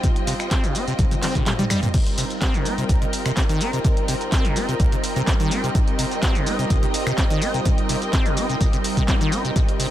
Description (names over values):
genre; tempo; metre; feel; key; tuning
acid house; 126 BPM; 4/4; swing 53% on 16ths; C minor; A4 = 439 Hz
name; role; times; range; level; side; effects
lush unison pad; sustained chords; 0.0-9.9 s; G3 to Eb5; -27 LUFS; right 1 dB; chorus, phaser, sidechain pumping
liquid acid bass; riff; 0.0-9.9 s; C2 to C4; -25 LUFS; equal; chorus, tube saturation, tape echo
electronic kick drum; drums; 0.0-9.7 s; none; -21 LUFS; equal; none
punchy analog drum machine; drums; 0.0-9.9 s; crash cymbal, finger snaps, handclaps, hi-hat, shaker, toms; -27 LUFS; equal; none
warm studio string section; texture; 0.0-9.9 s; C4 to G5; -29 LUFS; equal; sidechain pumping
room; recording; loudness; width
light reverb; none; -18 LUFS; side -12 dB against mid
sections
0.0-1.9 A section; 1.9-9.9 B section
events
drum fill 1.0-1.9; kick drops out 1.5-1.9; drop 1.9-9.9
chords
0.0 Cm; 1.9 Cm7